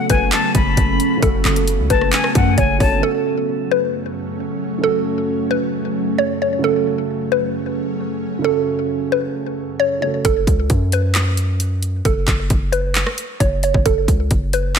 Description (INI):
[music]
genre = hip hop, trap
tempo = 133 BPM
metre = 4/4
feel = half-time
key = F# minor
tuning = A4 = 440 Hz
[part]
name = mallet-like synth pluck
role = melody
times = 0.0-14.8 s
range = A4 to C#5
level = -21 LUFS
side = equal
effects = chorus, phaser, ping-pong delay
[part]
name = jazz flute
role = second line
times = 0.0-3.0 s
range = F#5 to B5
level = -22 LUFS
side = left 6 dB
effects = ping-pong delay
[part]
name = dark concert grand piano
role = accompaniment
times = 0.0-10.3 s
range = C#3 to A4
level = -24 LUFS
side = right 6 dB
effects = none
[part]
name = ethereal airy pad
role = sustained chords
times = 0.0-10.2 s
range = F#2 to C#4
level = -24 LUFS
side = left 1 dB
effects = ensemble chorus, built-in reverb
[part]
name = hard-hitting 808-style bass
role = bass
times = 0.1-3.0, 10.2-14.8 s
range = F#1 to F#2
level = -19 LUFS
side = equal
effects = none
[part]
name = trap drum kit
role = drums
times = 0.1-2.9, 10.2-14.8 s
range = handclaps, hi-hat, kick drum, rim click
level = -18 LUFS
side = equal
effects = overdrive
[sound]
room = light reverb, digital ambience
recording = none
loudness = -16 LUFS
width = side -7 dB against mid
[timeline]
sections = 0.0-3.0 A section; 3.0-10.2 B section; 10.2-14.8 C section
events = none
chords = 0.0 F#m